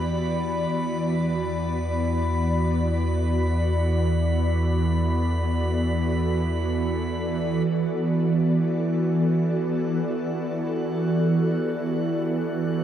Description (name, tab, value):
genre	ambient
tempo	free time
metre	none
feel	none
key	E minor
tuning	A4 = 441 Hz
part	ethereal airy pad	sustained chords	0.0-12.8 s	E3 to D5	-24 LUFS	right 1 dB	ensemble chorus, built-in reverb, phaser
part	warm sub bass	bass	0.0-7.6 s	E2	-25 LUFS	equal	none
part	bowed-like drone	drone	0.0-12.8 s	E3	-32 LUFS	right 1 dB	built-in reverb
part	drifting glass-harmonics texture	texture	0.0-12.8 s	B5 to F#6	-35 LUFS	equal	chorus, built-in reverb
room	wet huge ambient reverb, RT60 8.8 s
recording	dark, warm production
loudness	-22 LUFS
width	side -10 dB against mid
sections	0.0-7.7 A section; 7.7-12.8 B section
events	fade-in on synth texture 7.7-12.8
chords	0.0 Em7; 0.7 D6/E; 7.7 Em11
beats	free time